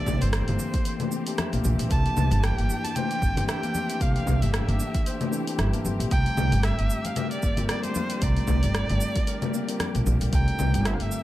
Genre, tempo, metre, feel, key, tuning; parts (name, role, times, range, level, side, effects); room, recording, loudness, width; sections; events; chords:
organic downtempo; 114 BPM; 4/4; swing 56% on 16ths; C mixolydian; A4 = 440 Hz
rich kamancheh; melody; 0.0-11.2 s; C5 to A5; -32 LUFS; right 1 dB; dub echo
mellow tine electric piano; accompaniment; 0.0-11.2 s; E3 to Bb5; -34 LUFS; left 1 dB; fast stereo tremolo, sidechain pumping, analog delay
muted studio string section; sustained chords; 0.0-11.2 s; D3 to G4; -38 LUFS; left 1 dB; sidechain pumping
Celtic harp; arpeggios; 0.0-11.2 s; A3 to E5; -34 LUFS; left 4 dB; dub echo
upright bass; bass; 0.1-11.1 s; G1 to C2; -24 LUFS; equal; tube saturation, sidechain pumping
deep house drum kit; drums; 0.1-11.2 s; cabasa, congas, hi-hat, rim click; -31 LUFS; left 2 dB
electronic kick drum; drums; 0.1-10.4 s; -26 LUFS; right 1 dB
congas; percussion; 0.1-10.8 s; -34 LUFS; left 1 dB
light reverb, studio reverb; echo-heavy mix; -22 LUFS; side -15 dB against mid
0.0-11.2 A section
0.0 C7; 6.1 Gmadd9